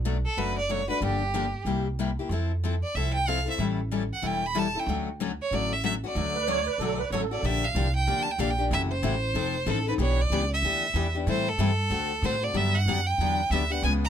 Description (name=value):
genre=acoustic string swing (jazz manouche)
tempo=187 BPM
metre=4/4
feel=swing 60% on 8ths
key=unclear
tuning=A4 = 440 Hz
part: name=upright bass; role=bass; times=0.0-14.1 s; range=E1 to A2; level=-28 LUFS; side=right 1 dB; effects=none
part: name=picked steel-string acoustic guitar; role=accompaniment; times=0.1-14.0 s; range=B2 to A4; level=-30 LUFS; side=left 7 dB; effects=none
part: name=bright violin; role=melody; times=0.3-14.1 s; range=G4 to B5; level=-28 LUFS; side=right 2 dB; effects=none
part: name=musette accordion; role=second line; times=6.3-7.4 s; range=A4 to C#5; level=-30 LUFS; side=right 13 dB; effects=none
room=little or no reverb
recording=close, detailed microphones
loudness=-24 LUFS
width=side -9 dB against mid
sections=0.0-7.4 A section; 7.4-14.1 B section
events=none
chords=0.0 Bm7; 1.0 Gm7; 1.7 C7; 2.3 Fmaj7; 3.6 A7; 4.9 Dmaj7; 7.4 Gm7; 8.7 F#m7b5; 9.3 F7; 10.0 Em7; 11.3 Am7; 11.9 D7; 12.5 Gmaj7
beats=0.05 0.37 0.69 | 1.01 1.33 1.66 1.98 | 2.30 2.62 2.94 3.26 | 3.58 3.91 4.23 4.55 | 4.87 5.19 5.51 5.83 | 6.15 6.47 6.79 7.11 | 7.43 7.75 8.07 8.39 | 8.71 9.03 9.35 9.67 | 9.99 10.31 10.63 10.95 | 11.27 11.59 11.91 12.23 | 12.55 12.87 13.19 13.51 | 13.83